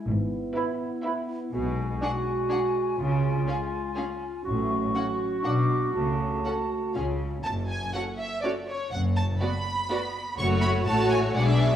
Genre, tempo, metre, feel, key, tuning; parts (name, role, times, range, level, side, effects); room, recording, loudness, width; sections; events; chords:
cinematic; 123 BPM; 3/4; straight; F# minor; A4 = 441 Hz
mellow French horn section; sustained chords; 0.0-7.2 s; F#3 to F#4; -32 LUFS; left 1 dB
rich studio cello section; bass; 0.1-11.8 s; F#2 to C#3; -30 LUFS; equal
rich studio double bass section; bass; 0.1-11.8 s; F#1 to C#2; -31 LUFS; equal
rich studio violin section; melody; 0.6-11.8 s; C#5 to C#6; -32 LUFS; right 1 dB
hollow concert flute; second line; 0.6-7.2 s; G#5 to D6; -34 LUFS; left 1 dB
rich studio violin section; second line; 0.6-11.8 s; F#4 to D5; -33 LUFS; left 2 dB
warm clarinet; second line; 0.6-7.2 s; E4 to F#4; -32 LUFS; right 2 dB
warm studio viola section; accompaniment; 0.6-11.8 s; G#3 to F#4; -31 LUFS; right 1 dB
moderate scoring stage reverb, RT60 1.6 s; -24 LUFS; side -10 dB against mid
0.0-7.5 A section; 7.5-11.8 B section
0.1 E/G#; 1.5 G#m7/B; 3.0 C#; 4.5 F#m/A; 5.4 Bm; 5.9 F#m/C#; 7.0 C#; 7.5 F#5; 8.9 B5/F#; 10.4 F#m